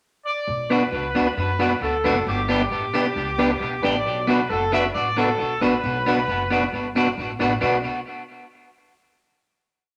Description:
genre	ska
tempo	134 BPM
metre	4/4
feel	straight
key	B minor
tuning	A4 = 440 Hz
part	clear horn section	melody	0.3-7.2 s	G4 to E5	-27 LUFS	equal	none
part	upright bass	bass	0.5-7.8 s	F#1 to F#2	-33 LUFS	equal	none
part	electric guitar at the edge of break-up	accompaniment	0.7-7.8 s	B3 to G4	-25 LUFS	equal	tape echo
part	tonewheel organ	stabs	0.7-7.8 s	B3 to B4	-28 LUFS	equal	fast rotary speaker
room	wet studio reverb, RT60 0.8 s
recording	none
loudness	-22 LUFS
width	mono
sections	0.0-0.5 pickup bar; 0.5-7.6 A section; 7.6-9.4 final chord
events	none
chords	0.5 Bm; 2.3 G; 4.0 Bm

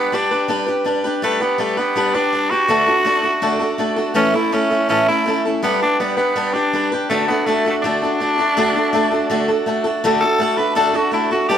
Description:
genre	rock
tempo	164 BPM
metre	4/4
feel	straight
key	D major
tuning	A4 = 442 Hz
part	raspy tenor saxophone	melody	0.0-11.6 s	A3 to B4	-19 LUFS	equal	none
part	picked swing-style acoustic guitar	accompaniment	0.0-11.6 s	A2 to B4	-18 LUFS	equal	none
room	wet stone room reverb, RT60 1.4 s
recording	band playing live in one room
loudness	-15 LUFS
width	side -9 dB against mid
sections	0.0-10.0 A section; 10.0-11.6 B section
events	tenor saxophone solo 10.0-11.6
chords	0.0 G; 2.7 D; 4.2 A; 5.6 G; 7.1 D

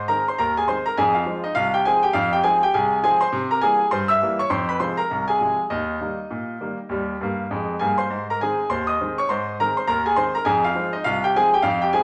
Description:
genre	ragtime piano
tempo	101 BPM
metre	2/4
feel	swing 59% on 16ths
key	Ab major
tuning	A4 = 440 Hz
part	bright concert grand piano	solo	0.0-12.0 s	C2 to E6	-21 LUFS	equal	none
room	wet large studio reverb, RT60 1.2 s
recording	none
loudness	-22 LUFS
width	mono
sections	0.0-12.0 A section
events	none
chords	0.0 Ab; 1.0 Fm; 3.3 C7; 4.5 Fm; 5.7 Eb; 8.1 Ab; 10.5 Fm

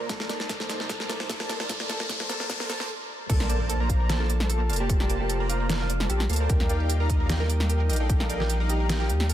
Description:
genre	future bass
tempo	150 BPM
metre	4/4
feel	swing 53% on 16ths, half-time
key	Bb major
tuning	A4 = 440 Hz
part	airy breathy pad	sustained chords	0.0-9.3 s	C3 to F4	-40 LUFS	equal	chorus, sidechain pumping
part	wide unison pluck	arpeggios	0.0-9.3 s	G4 to Bb5	-40 LUFS	right 6 dB	vintage 12-bit sampler grit, sidechain pumping, dub echo
part	big bright polysynth	riff	0.0-9.3 s	Bb3 to Bb5	-33 LUFS	right 2 dB	wide subtle chorus, sidechain pumping
part	saturated sub bass	bass	0.0-9.3 s	F1 to Eb2	-26 LUFS	equal	sidechain pumping
part	riser and impact	sound effects	0.0-4.9 s	none	-34 LUFS	left 1 dB	none
part	mellow electric guitar	melody	0.1-9.3 s	F4 to Bb4	-35 LUFS	left 2 dB	sidechain pumping, tape echo
part	dubstep drum kit	drums	0.1-9.3 s	crash cymbal, hi-hat, snare drum	-31 LUFS	equal	none
part	electronic kick drum	drums	0.1-8.2 s	none	-26 LUFS	equal	none
part	airy dreamy lead	arpeggios	3.3-9.3 s	G5 to Bb5	-40 LUFS	equal	chorus, sidechain pumping, dub echo
room	digital ambience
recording	dense, heavily limited modern master, high-pass filter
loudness	-24 LUFS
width	side -12 dB against mid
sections	0.0-3.3 A section; 3.3-9.3 B section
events	build-up 0.0-3.3; drum fill 0.0-2.9; riser 0.0-2.9; stop 2.9-3.3; drop 3.3-9.3; impact 3.3-4.9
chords	0.0 Cm7; 3.3 Bbmaj7; 6.5 Ebmaj7

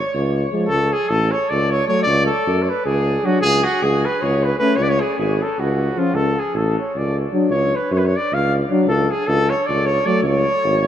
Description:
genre	balkan folk, Balkan brass band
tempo	308 BPM (eighths)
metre	7/8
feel	straight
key	C# phrygian dominant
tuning	A4 = 440 Hz
part	mellow trumpet	melody	0.0-10.9 s	E#4 to E#5	-19 LUFS	equal	none
part	warm tuba	bass	0.1-10.9 s	G#1 to F#2	-20 LUFS	equal	none
part	dark French horn	accompaniment	0.5-10.2 s	G#3 to D4	-26 LUFS	left 6 dB	none
part	mellow euphonium	accompaniment	0.5-10.2 s	E#3 to A3	-27 LUFS	right 4 dB	none
room	wet cathedral reverb, RT60 5.3 s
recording	in a vast, echoing space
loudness	-16 LUFS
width	side -10 dB against mid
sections	0.7-10.9 A section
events	none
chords	0.0 C#; 0.7 A; 2.0 F#5/C#; 4.8 C#5; 6.1 D; 7.5 C#7(no3); 8.9 F#m/C# (rootless); 10.2 C#5

